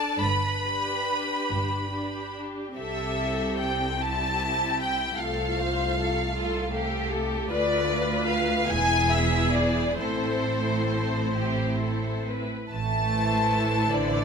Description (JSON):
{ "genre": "classical, slow romantic movement for string orchestra", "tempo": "43-54 BPM (dotted quarters)", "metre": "6/8", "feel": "rubato", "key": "A minor from 7.5 s", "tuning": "A4 = 440 Hz", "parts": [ { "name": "warm symphonic violin section", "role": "melody", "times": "0.0-14.2 s", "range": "C5 to B5", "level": "-28 LUFS", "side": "left 1 dB", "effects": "none" }, { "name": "rich symphonic violin section", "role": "second line", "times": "0.0-14.2 s", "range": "F4 to D5", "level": "-32 LUFS", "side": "left 2 dB", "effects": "none" }, { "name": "rich symphonic viola section", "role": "accompaniment", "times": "0.0-14.2 s", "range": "E3 to A4", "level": "-31 LUFS", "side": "equal", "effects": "none" }, { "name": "rich studio double bass section", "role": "bass", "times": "0.0-14.2 s", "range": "E1 to D2", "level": "-32 LUFS", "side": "right 3 dB", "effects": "none" }, { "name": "rich symphonic cello section", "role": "bass", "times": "0.0-14.2 s", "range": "C2 to A3", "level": "-32 LUFS", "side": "right 2 dB", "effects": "none" } ], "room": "light reverb", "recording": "close, detailed microphones", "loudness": "-24 LUFS", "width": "side -6 dB against mid", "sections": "0.0-12.7 A section; 12.7-14.2 B section", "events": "none", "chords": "0.2 G; 2.8 C; 5.2 F/C; 7.5 Bm7b5/D; 8.7 E; 10.0 Am" }